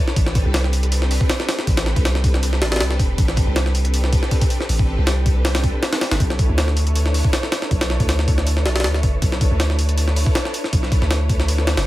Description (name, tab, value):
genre	drum and bass, jungle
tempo	159 BPM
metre	4/4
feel	swing 54% on 16ths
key	B phrygian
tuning	A4 = 441 Hz
part	soft string machine	sustained chords	0.0-11.9 s	C4 to C#5	-26 LUFS	equal	ensemble chorus
part	jungle sampler-style drum kit	drums	0.1-11.9 s	hi-hat, kick drum, snare drum	-19 LUFS	equal	none
part	long sustained 808-style bass	bass	0.2-11.9 s	E1 to D2	-19 LUFS	equal	tube saturation
room	digital ambience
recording	none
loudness	-16 LUFS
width	side -16 dB against mid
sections	0.0-11.9 A section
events	none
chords	0.2 Am11; 6.2 Bm11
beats	| 0.16 0.54 0.92 1.30 | 1.67 2.05 2.43 2.81 | 3.18 3.56 3.94 4.32 | 4.69 5.07 5.45 5.82 | 6.20 6.58 6.96 7.33 | 7.71 8.09 8.47 8.84 | 9.22 9.60 9.97 10.35 | 10.73 11.11 11.48 11.86